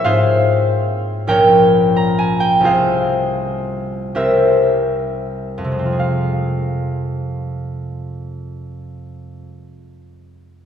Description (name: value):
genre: classical, solo harp piece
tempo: 30-50 BPM (dotted quarters)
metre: 6/8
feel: rubato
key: F minor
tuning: A4 = 441 Hz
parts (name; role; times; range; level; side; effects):
- concert harp; solo; 0.0-9.5 s; Bb1 to Bb5; -15 LUFS; equal; none
room: wet church reverb, RT60 3.2 s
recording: none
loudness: -14 LUFS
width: side -8 dB against mid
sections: 0.0-6.0 A section; 6.0-9.5 B section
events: slowing down 0.0-6.0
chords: 0.0 Fm/Ab; 1.3 Gdim/Bb; 2.6 Fm/C; 4.2 C7; 6.0 Fm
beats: | 0.03 1.27 | 2.63 4.15 | 5.98 7.78